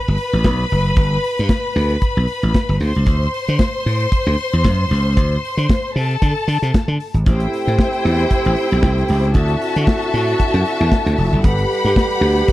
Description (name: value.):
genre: disco.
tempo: 115 BPM.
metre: 4/4.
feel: swing 56% on 16ths.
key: unclear.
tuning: A4 = 440 Hz.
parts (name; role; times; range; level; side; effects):
clear studio string section; second line; 0.0-12.5 s; E4 to C6; -20 LUFS; left 2 dB; none.
slap bass; bass; 0.1-12.4 s; F1 to D3; -17 LUFS; equal; none.
modern studio drum kit; drums; 0.2-12.5 s; hi-hat, kick drum, snare drum; -16 LUFS; equal; none.
dark French horn section; sustained chords; 7.3-12.5 s; D3 to B4; -23 LUFS; right 2 dB; none.
room: little or no reverb.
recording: dry, close 1970s-style studio recording.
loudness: -14 LUFS.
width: side -16 dB against mid.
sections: 0.0-7.3 A section; 7.3-12.5 B section.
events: none.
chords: 0.0 Gmaj7; 2.8 D7(no3); 7.3 Am7; 9.4 D9; 11.4 Gmaj7.